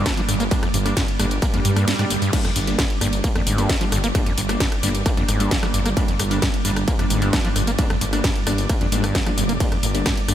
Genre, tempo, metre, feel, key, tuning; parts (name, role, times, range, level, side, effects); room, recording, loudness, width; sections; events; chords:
driving peak-time techno; 132 BPM; 4/4; straight; G minor; A4 = 440 Hz
overdriven acid bass; riff; 0.0-10.3 s; G1 to Bb3; -25 LUFS; equal; distortion, sidechain pumping, analog delay
wavetable chord stab; stabs; 0.0-10.3 s; G3 to D4; -27 LUFS; equal; sidechain pumping, analog delay
detuned saw bass; bass; 0.0-10.3 s; F1 to G2; -24 LUFS; equal; sidechain pumping
swarming drone; drone; 0.0-10.3 s; G2 to G3; -29 LUFS; right 3 dB; built-in reverb, sidechain pumping
electronic kick drum; drums; 0.1-10.2 s; -22 LUFS; equal; distortion, overdrive
techno drum kit; drums; 0.1-10.3 s; crash cymbal, hi-hat, ride cymbal, rim click, snare drum, tambourine; -25 LUFS; equal; overdrive
swell; sound effects; 1.6-2.3 s; -33 LUFS; right 1 dB
light reverb, digital ambience; -18 LUFS; side -11 dB against mid
0.0-10.3 A section
swell 1.6-2.3
0.0 Gm